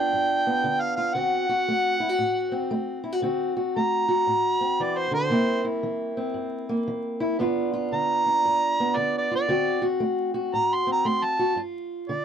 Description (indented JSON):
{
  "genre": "acoustic country blues, solo or duo",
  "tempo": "115 BPM",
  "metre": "4/4",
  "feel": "swing 64% on 8ths",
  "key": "unclear",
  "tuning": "A4 = 439 Hz",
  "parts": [
    { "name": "overdriven harmonica", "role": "melody", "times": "0.0-12.2 s", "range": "C5 to C6", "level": "-23 LUFS", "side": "right 2 dB", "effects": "none" },
    { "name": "fingerpicked steel-string acoustic guitar", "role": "accompaniment", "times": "0.0-12.2 s", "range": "G2 to F#4", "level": "-25 LUFS", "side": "left 1 dB", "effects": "none" }
  ],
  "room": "little or no reverb",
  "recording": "dry, close 1970s-style studio recording, vinyl crackle",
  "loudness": "-22 LUFS",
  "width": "side -8 dB against mid",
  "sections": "0.0-11.6 A section",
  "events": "harmonica solo 0.0-11.6",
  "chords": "0.0 G7; 1.2 D7; 5.3 C7; 7.4 G7; 9.5 D7; 11.6 G7(no3)"
}